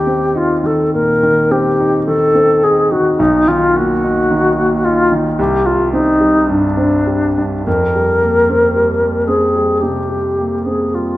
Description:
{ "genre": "classical, impressionist duo for alto flute and grand piano", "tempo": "49-57 BPM", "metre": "4/4", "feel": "rubato", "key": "unclear", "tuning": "A4 = 440 Hz", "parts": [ { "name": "wooden-headed alto flute", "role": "melody", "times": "0.0-11.2 s", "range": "D4 to Bb4", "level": "-13 LUFS", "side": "left 1 dB", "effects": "none" }, { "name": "warm concert grand piano", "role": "accompaniment", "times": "0.0-11.2 s", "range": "B1 to Eb4", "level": "-16 LUFS", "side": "right 1 dB", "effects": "none" } ], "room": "wet recital hall reverb, RT60 1.4 s", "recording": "none", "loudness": "-11 LUFS", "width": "side -16 dB against mid", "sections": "0.0-11.2 A section", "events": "none", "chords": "0.0 Eb5; 3.2 Bmaj7; 5.4 Csus2; 7.7 Fsus24" }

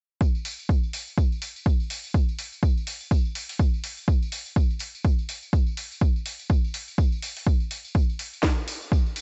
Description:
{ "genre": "piano house", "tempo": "124 BPM", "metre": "4/4", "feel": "swing 59% on 16ths", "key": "none", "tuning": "none", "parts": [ { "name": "electronic kick drum", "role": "drums", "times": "0.2-9.0 s", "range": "none", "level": "-24 LUFS", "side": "equal", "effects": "overdrive" }, { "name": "tambourine", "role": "percussion", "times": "0.2-9.2 s", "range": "none", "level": "-42 LUFS", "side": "equal", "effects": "none" }, { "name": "house drum kit", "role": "drums", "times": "0.5-9.2 s", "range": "hi-hat, snare drum", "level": "-36 LUFS", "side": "equal", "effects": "none" } ], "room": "little or no reverb", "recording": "nothing above 8.0 kHz", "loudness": "-26 LUFS", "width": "mono", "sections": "0.2-9.2 A section", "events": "none", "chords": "none" }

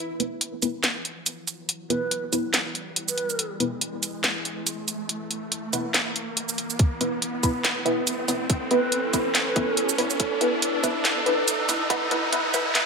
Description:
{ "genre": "deep dubstep", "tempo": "141 BPM", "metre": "4/4", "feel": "swing 56% on 16ths, half-time", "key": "unclear", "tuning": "A4 = 440 Hz", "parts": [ { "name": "deep dark ambient pad", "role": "sustained chords", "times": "0.0-12.9 s", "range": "E4 to B4", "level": "-33 LUFS", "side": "right 3 dB", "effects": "chorus, built-in reverb" }, { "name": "riser", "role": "sound effects", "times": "0.0-12.9 s", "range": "none", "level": "-30 LUFS", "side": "equal", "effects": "none" }, { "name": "filtered dub chord stab", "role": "stabs", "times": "0.2-12.8 s", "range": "B3 to B4", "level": "-26 LUFS", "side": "equal", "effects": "phaser, lush chorus, dub echo" }, { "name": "garage drum kit", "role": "drums", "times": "0.2-12.8 s", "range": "hi-hat, shaker, snare drum", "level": "-24 LUFS", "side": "right 1 dB", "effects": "high-pass filter on snare, high-pass filter on hats, high-pass filter on perc, high-pass filter on room" }, { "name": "breathy mellow low ney", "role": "melody", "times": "1.9-3.5, 8.7-9.9 s", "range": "B4", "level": "-31 LUFS", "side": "right 1 dB", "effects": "dub echo" }, { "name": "electronic kick drum", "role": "drums", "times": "6.8-12.6 s", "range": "none", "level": "-23 LUFS", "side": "equal", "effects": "none" } ], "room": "wet lush hall reverb, RT60 1.6 s, digital ambience", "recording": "high-pass filter", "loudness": "-22 LUFS", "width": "side -4 dB against mid", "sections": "0.0-12.9 A section", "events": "build-up 0.0-12.9; riser 0.0-12.9; filter sweep on ambient pad 0.0-12.9", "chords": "0.0 E5" }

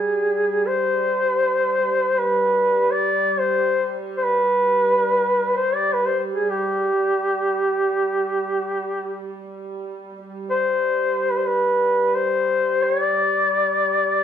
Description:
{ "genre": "caucasian folk, Caucasian lament", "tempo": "free time", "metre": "none", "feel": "none", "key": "G major", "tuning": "A4 = 436 Hz", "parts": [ { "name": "warm duduk", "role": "melody", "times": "0.0-14.2 s", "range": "G4 to D5", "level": "-18 LUFS", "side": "left 1 dB", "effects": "none" }, { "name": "warm symphonic string section", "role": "drone", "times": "0.0-14.2 s", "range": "G3", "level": "-29 LUFS", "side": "right 6 dB", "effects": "none" } ], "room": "wet recital hall reverb, RT60 1.4 s", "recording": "none", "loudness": "-18 LUFS", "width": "side -9 dB against mid", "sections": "0.0-14.2 A section", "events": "none", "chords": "none" }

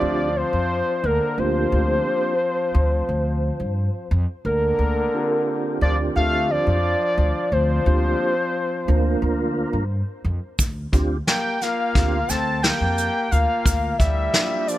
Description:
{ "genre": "progressive instrumental, band music in an uneven meter", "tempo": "176 BPM (eighths)", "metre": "9/8", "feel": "straight", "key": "unclear", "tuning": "A4 = 440 Hz", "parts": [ { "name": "fat analog lead", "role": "melody", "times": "0.0-14.8 s", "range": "Bb4 to A5", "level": "-23 LUFS", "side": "equal", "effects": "digital delay" }, { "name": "bright trombone", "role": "second line", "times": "0.0-14.8 s", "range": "D3 to C4", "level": "-28 LUFS", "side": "left 4 dB", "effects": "none" }, { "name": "mellow tonewheel organ", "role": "accompaniment", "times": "0.0-14.8 s", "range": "Bb3 to Bb4", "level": "-26 LUFS", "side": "right 3 dB", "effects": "chorus vibrato, slow rotary speaker" }, { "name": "upright bass", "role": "bass", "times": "0.0-14.3 s", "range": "D2 to G2", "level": "-22 LUFS", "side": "equal", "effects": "none" }, { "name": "vintage brush drum kit", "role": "drums", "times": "10.6-14.8 s", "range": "hi-hat, kick drum, snare drum", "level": "-22 LUFS", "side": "equal", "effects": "none" }, { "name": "tube shaker", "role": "percussion", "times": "10.6-14.8 s", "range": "none", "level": "-32 LUFS", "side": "right 6 dB", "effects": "none" } ], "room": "little or no reverb", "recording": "none", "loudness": "-19 LUFS", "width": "side -14 dB against mid", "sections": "0.0-14.8 A section", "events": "none", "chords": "0.0 Bb6/D; 1.4 C7sus4/D; 4.5 Bb6/D; 7.5 C7sus4/D; 10.6 Bb6/D; 13.7 Dmadd11" }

